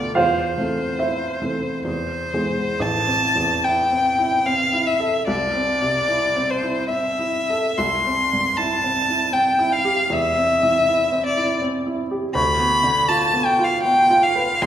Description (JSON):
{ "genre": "classical, romantic duo for violin and grand piano", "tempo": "61-84 BPM", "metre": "3/4", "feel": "rubato", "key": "A minor", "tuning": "A4 = 439 Hz", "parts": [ { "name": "rich violin", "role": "melody", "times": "0.0-14.7 s", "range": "C5 to C6", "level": "-19 LUFS", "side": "left 1 dB", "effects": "none" }, { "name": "warm baby grand piano", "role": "accompaniment", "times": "0.0-14.7 s", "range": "A1 to F5", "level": "-23 LUFS", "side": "right 2 dB", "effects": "none" } ], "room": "wet recital hall reverb, RT60 1.7 s", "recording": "recorded in a church or concert hall", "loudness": "-17 LUFS", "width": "side -10 dB against mid", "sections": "0.0-2.8 A section; 2.8-14.7 B section", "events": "none", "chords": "0.2 Am/E; 1.9 E; 2.8 Am; 5.3 Am/C (rootless); 7.8 C; 10.1 C/E; 12.3 Bdim/D", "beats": "| 0.17 1.00 1.86 | 2.80 3.64 4.46 | 5.27 6.08 6.89 | 7.76 8.55 9.31 | 10.09 10.88 11.62 | 12.34 13.07 13.84 | 14.63" }